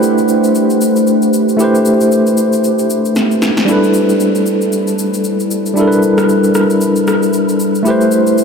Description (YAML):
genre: amapiano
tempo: 115 BPM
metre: 4/4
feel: swing 58% on 16ths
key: A minor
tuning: A4 = 440 Hz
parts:
  - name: tine electric piano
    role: accompaniment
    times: 0.0-8.4 s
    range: G3 to C5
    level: -10 LUFS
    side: equal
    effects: fast tremolo
  - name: electronic shaker, snare drum and rim click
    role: drums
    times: 0.0-8.4 s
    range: none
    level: -20 LUFS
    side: left 1 dB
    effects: overdrive
room: wet huge ambient reverb, RT60 8.2 s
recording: dreamy mix soaked in reverb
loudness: -10 LUFS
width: side -6 dB against mid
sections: 0.0-8.4 A section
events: drum fill 3.2-3.7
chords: 0.0 Am9; 3.7 G69; 7.9 Am9